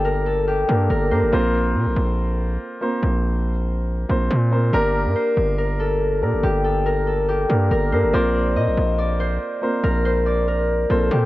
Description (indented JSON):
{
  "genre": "hip hop, drill",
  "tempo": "141 BPM",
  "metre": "4/4",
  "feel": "half-time",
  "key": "unclear",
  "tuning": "A4 = 440 Hz",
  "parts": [
    { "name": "concert harp", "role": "melody", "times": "0.0-11.3 s", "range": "G4 to Eb5", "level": "-22 LUFS", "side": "left 1 dB", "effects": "low-pass filter" },
    { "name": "dark baby grand piano", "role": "accompaniment", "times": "0.0-11.3 s", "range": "Bb3 to C5", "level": "-24 LUFS", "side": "right 1 dB", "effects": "low-pass filter" },
    { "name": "distorted 808-style bass", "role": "bass", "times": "0.0-11.3 s", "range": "G1 to Bb2", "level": "-21 LUFS", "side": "equal", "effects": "distortion" }
  ],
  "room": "light reverb, small room ambience",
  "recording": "worn, warbling old tape, cassette tape, warbly pitch drift",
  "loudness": "-18 LUFS",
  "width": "side -17 dB against mid",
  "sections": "0.0-11.3 A section",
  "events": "none",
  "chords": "0.0 Gmadd9; 1.3 Bbsus2; 4.7 Gmadd9; 8.1 Bbsus2",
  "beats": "0.05 0.47 0.90 | 1.33 1.75 2.18 2.60 | 3.03 3.45 3.88 4.30 | 4.73 5.16 5.58 6.01 | 6.43 6.86 7.28 7.71 | 8.13 8.56 8.99 9.41 | 9.84 10.26 10.69 11.11"
}